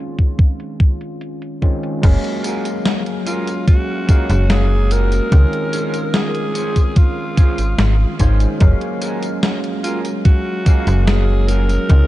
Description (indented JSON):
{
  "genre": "vaporwave",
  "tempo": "73 BPM",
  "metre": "4/4",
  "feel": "straight",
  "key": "unclear",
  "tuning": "A4 = 441 Hz",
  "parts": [
    { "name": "overdriven tine electric piano", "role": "accompaniment", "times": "0.0-12.1 s", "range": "Eb3 to F5", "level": "-23 LUFS", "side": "equal", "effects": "lush chorus, vintage 12-bit sampler grit, diffuse ambient delay" },
    { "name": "electronic kick drum", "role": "drums", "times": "0.2-12.1 s", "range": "none", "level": "-12 LUFS", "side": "equal", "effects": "none" },
    { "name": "gated 80s digital drum machine", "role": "drums", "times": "0.2-12.1 s", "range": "crash cymbal, hi-hat, snare drum, tambourine", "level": "-23 LUFS", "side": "left 1 dB", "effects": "gated reverb, gated reverb snare, low-pass filter on hats, low-pass filter on cymbals, low-pass filter on perc, low-pass filter on snare, low-pass filter on room" },
    { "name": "slap-like FM bass", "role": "bass", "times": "2.0-12.0 s", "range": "Gb1 to Db2", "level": "-14 LUFS", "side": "equal", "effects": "tube saturation" },
    { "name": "electric guitar at the edge of break-up", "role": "riff", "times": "2.4-11.7 s", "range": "Db4 to C5", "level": "-31 LUFS", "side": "right 3 dB", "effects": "lush chorus, diffuse ambient delay" },
    { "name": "breathy alto saxophone", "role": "melody", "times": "3.3-12.1 s", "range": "F4 to Bb4", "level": "-24 LUFS", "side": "equal", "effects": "diffuse ambient delay" }
  ],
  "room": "light reverb",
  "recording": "cassette tape, low-pass filter, nothing above 10.9 kHz",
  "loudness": "-14 LUFS",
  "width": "side -15 dB against mid",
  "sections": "0.0-2.0 A section; 2.0-12.1 B section",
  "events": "none",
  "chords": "0.0 Dbmaj7; 2.0 Gbmaj9; 5.3 Dbmaj7; 8.6 Gbmaj9"
}